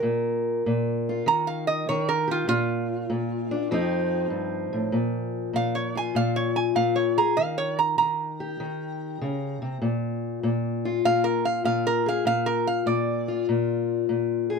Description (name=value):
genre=acoustic country blues, solo or duo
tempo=98 BPM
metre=4/4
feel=swing 66% on 8ths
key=unclear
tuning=A4 = 440 Hz
part: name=fingerpicked steel-string acoustic guitar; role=accompaniment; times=0.0-14.6 s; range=F2 to Bb4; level=-25 LUFS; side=left 3 dB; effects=none
part: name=lap resonator guitar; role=melody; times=1.3-13.5 s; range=F4 to Bb5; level=-25 LUFS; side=right 5 dB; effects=none
room=light reverb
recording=close, detailed microphones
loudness=-23 LUFS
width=side -5 dB against mid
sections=0.0-4.9 A section; 4.9-14.6 A section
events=resonator guitar played with a steel bar solo 0.0-4.9, 4.9-14.6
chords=0.0 Bb5; 1.3 Eb; 2.5 Bb; 3.7 F7; 4.9 Bb5; 7.4 Eb7; 9.8 Bb5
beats=| 0.04 0.66 1.27 1.88 | 2.49 3.10 3.71 4.32 | 4.94 5.55 6.16 6.77 | 7.38 7.99 8.60 9.21 | 9.83 10.44 11.05 11.66 | 12.27 12.88 13.48 14.09